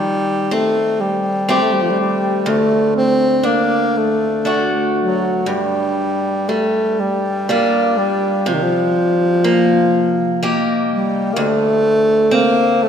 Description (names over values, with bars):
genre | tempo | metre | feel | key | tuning
celtic folk, Celtic slow air | 40 BPM (dotted quarters) | 6/8 | uneven beats, rubato | G minor | A4 = 439 Hz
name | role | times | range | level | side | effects
clear tenor saxophone | melody | 0.0-12.9 s | Eb3 to C4 | -16 LUFS | equal | none
picked acoustic archtop guitar | accompaniment | 0.0-12.9 s | D2 to G4 | -18 LUFS | equal | none
room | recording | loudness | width
wet church reverb, RT60 2.5 s | minimal, uncompressed stereo recording | -14 LUFS | side -8 dB against mid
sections
0.0-12.9 A section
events
none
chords
0.0 Am7b5/Eb; 2.5 D; 5.5 G5; 8.5 Cm7; 11.4 D5